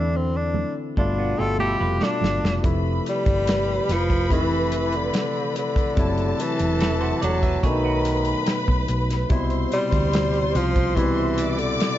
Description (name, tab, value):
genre	lush 1970s-style soul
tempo	72 BPM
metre	4/4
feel	straight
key	unclear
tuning	A4 = 440 Hz
part	breathy tenor saxophone	melody	0.0-12.0 s	D3 to A4	-25 LUFS	equal	none
part	barky tine electric piano	accompaniment	0.0-12.0 s	B2 to F4	-27 LUFS	left 2 dB	none
part	hollow-body short-scale fingered electric bass	bass	0.0-11.8 s	E1 to E2	-25 LUFS	equal	none
part	congas	percussion	0.1-2.4 s	none	-33 LUFS	right 6 dB	none
part	semi-hollow electric guitar	riff	1.0-9.1 s	B3 to E5	-32 LUFS	right 6 dB	lush chorus
part	warm soul drum kit	drums	1.0-12.0 s	hi-hat, kick drum, snare drum	-24 LUFS	equal	none
part	warm symphonic string section	second line	2.6-12.0 s	A4 to D6	-29 LUFS	left 1 dB	none
room	light reverb, small room ambience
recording	dark, warm production, nothing above 7.7 kHz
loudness	-20 LUFS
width	side -13 dB against mid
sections	0.0-2.6 A section; 2.6-12.0 B section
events	drum fill 0.0-2.6; tenor saxophone solo 0.0-2.6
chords	0.0 Dsus2; 1.0 G9; 2.6 Fmaj7; 6.0 F#m7b5; 7.6 B7; 9.3 Cmaj7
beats	0.14 0.97 1.81 | 2.64 3.47 4.31 5.14 | 5.97 6.80 7.64 8.47 | 9.30 10.13 10.97 11.80